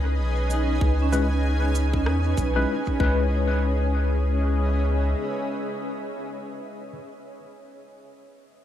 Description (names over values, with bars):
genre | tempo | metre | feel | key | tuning
ambient dub | 96 BPM | 4/4 | swing 59% on 16ths | C# minor | A4 = 440 Hz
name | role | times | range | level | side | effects
granular cloud pad | sustained chords | 0.0-6.6 s | C#4 to G#5 | -30 LUFS | equal | built-in reverb
vibraphone with medium mallets | arpeggios | 0.0-8.3 s | C#4 to C#5 | -33 LUFS | right 2 dB | dub echo
soft dub sub bass | bass | 0.0-5.1 s | B1 to E2 | -23 LUFS | equal | none
bubbling stepped-filter texture | texture | 0.0-3.3 s | B4 | -38 LUFS | right 4 dB | none
electronic cabasa and rim click | drums | 0.5-2.5 s | none | -38 LUFS | right 1 dB | studio reverb, dub echo
electronic kick drum | drums | 0.8-3.1 s | none | -26 LUFS | equal | studio reverb
tine electric piano | stabs | 1.1-6.9 s | G#3 to B4 | -29 LUFS | left 4 dB | medium stereo tremolo, dub echo
room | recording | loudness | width
little or no reverb | none | -21 LUFS | side -11 dB against mid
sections
0.0-3.3 A section; 3.3-5.8 B section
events
none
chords
0.0 C#m7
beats
0.19 | 0.81 1.44 2.06 2.69 | 3.31 3.94 4.56 5.19